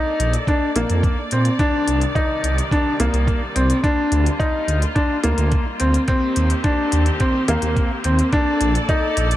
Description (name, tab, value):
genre	piano and strings electronica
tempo	107 BPM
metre	4/4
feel	straight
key	G minor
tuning	A4 = 439 Hz
part	bright symphonic string section	sustained chords	0.0-9.4 s	C3 to D5	-28 LUFS	left 1 dB	none
part	bright upright piano	riff	0.0-9.3 s	Bb3 to Eb4	-20 LUFS	left 1 dB	low-pass filter, tape echo
part	dark detuned saw bass	bass	0.2-9.3 s	Bb1 to Bb2	-19 LUFS	equal	tube saturation, sidechain pumping
part	electronic hi-hat	drums	0.2-9.4 s	none	-29 LUFS	left 5 dB	none
part	electronic kick drum	drums	0.5-9.0 s	none	-20 LUFS	equal	none
room	light reverb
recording	none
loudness	-16 LUFS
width	side -14 dB against mid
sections	0.0-9.4 A section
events	none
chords	0.0 Bbmaj7; 1.6 Cmadd9; 3.8 Gm7/D; 6.1 Eb6; 8.3 Bbmaj7